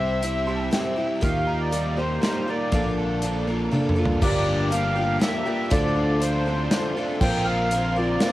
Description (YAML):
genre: folk rock and heartland rock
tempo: 120 BPM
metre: 3/4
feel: straight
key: unclear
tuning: A4 = 440 Hz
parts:
  - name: accordion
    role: melody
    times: 0.0-8.3 s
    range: C5 to G5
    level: -27 LUFS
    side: equal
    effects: light tremolo tuning, cassette tape
  - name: dark upright piano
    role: accompaniment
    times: 0.0-8.3 s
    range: Bb3 to C6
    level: -36 LUFS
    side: right 3 dB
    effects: none
  - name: picked twelve-string acoustic guitar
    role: accompaniment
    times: 0.0-8.3 s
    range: G2 to Bb4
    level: -27 LUFS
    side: left 2 dB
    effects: cassette tape
  - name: rich studio string section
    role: sustained chords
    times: 0.0-8.3 s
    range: F4 to E6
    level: -40 LUFS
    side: equal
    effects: none
  - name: overdriven electric guitar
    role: riff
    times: 0.0-8.3 s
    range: G2 to C5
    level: -29 LUFS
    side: right 1 dB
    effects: cassette tape
  - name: fingered electric bass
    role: bass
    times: 0.0-8.2 s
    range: G1 to Eb2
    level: -26 LUFS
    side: equal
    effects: none
  - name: natural country drum kit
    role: drums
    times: 0.2-8.3 s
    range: crash cymbal, hi-hat, kick drum, snare drum, toms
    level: -26 LUFS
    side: equal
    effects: cassette tape
room: light reverb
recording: home recording on cassette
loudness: -21 LUFS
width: side -16 dB against mid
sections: 0.0-4.2 A section; 4.2-8.3 B section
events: upright piano fill 0.2-1.2; drum fill 3.7-4.2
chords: 0.0 C; 1.2 Ebadd9; 2.7 Bbmaj7; 4.2 Gm7; 5.7 Dm7; 7.2 Bbsus2